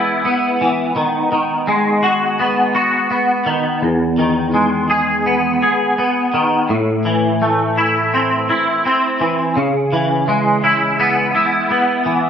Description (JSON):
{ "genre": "rock", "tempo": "84 BPM", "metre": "4/4", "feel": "straight", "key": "unclear", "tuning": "A4 = 441 Hz", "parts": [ { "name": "twangy electric guitar", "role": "solo", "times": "0.0-12.3 s", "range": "E2 to G#4", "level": "-14 LUFS", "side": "equal", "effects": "ensemble chorus, slapback echo" } ], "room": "moderate scoring stage reverb, RT60 1.5 s", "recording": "dark, warm production", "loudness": "-14 LUFS", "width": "side -8 dB against mid", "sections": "0.0-6.7 A section; 6.7-12.3 A section", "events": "none", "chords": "0.0 C#m7 (rootless); 1.0 G#m7/D#; 3.8 Emaj7; 6.7 Am; 9.6 C#m7", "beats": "0.25 | 0.97 1.68 2.40 3.12 | 3.83 4.55 5.26 5.98 | 6.70 7.41 8.13 8.84 | 9.56 10.28 10.99 11.71" }